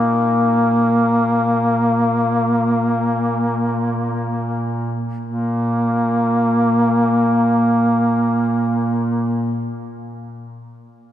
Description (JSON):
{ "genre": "caucasian folk, Caucasian lament", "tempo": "free time", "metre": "none", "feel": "none", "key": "unclear", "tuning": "A4 = 440 Hz", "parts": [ { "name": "mellow duduk", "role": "melody", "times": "0.0-9.7 s", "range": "Bb3", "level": "-17 LUFS", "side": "equal", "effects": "none" }, { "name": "warm duduk", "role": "drone", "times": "0.0-9.7 s", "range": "Bb2", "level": "-24 LUFS", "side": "right 1 dB", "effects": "none" } ], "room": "wet cathedral reverb, RT60 4.5 s", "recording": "recorded in a church or concert hall", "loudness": "-16 LUFS", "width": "side -11 dB against mid", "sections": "0.0-5.3 A section; 5.3-9.9 B section", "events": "slowing down 0.0-5.3", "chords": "none" }